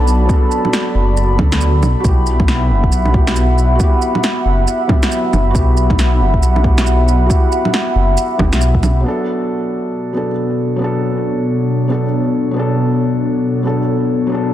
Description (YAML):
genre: future garage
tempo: 137 BPM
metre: 4/4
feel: swing 61% on 16ths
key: B minor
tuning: A4 = 440 Hz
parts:
  - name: felt-muted upright piano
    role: accompaniment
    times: 0.0-14.5 s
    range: F#3 to A4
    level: -20 LUFS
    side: equal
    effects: vintage 12-bit sampler grit, sidechain pumping, analog delay
  - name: warbly tape-like pad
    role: sustained chords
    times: 0.0-14.5 s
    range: B2 to B5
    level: -18 LUFS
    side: equal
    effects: chorus, built-in reverb, sidechain pumping
  - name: swelling detuned saw bass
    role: bass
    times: 0.0-9.0 s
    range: F#1 to D2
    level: -14 LUFS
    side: equal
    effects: sidechain pumping
  - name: electronic shaker, bongos and snare drum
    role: drums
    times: 0.1-8.9 s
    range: none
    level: -20 LUFS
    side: right 1 dB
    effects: overdrive
  - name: electronic kick drum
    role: drums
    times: 0.3-8.8 s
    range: none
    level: -15 LUFS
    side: equal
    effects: overdrive
room: light reverb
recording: dense, heavily limited modern master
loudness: -12 LUFS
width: side -12 dB against mid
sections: 0.0-9.1 A section; 9.1-14.5 B section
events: filter sweep on ambient pad 9.1-14.5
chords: 0.0 Bm7; 2.0 Emadd9; 9.1 Bm7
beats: | 0.29 0.73 1.17 1.61 | 2.04 2.48 2.92 3.36 | 3.80 4.24 4.67 5.11 | 5.55 5.99 6.42 6.86 | 7.30 7.74 8.18 8.62 | 9.05 9.49 9.93 10.37 | 10.80 11.24 11.68 12.12 | 12.56 12.99 13.43 13.87 | 14.31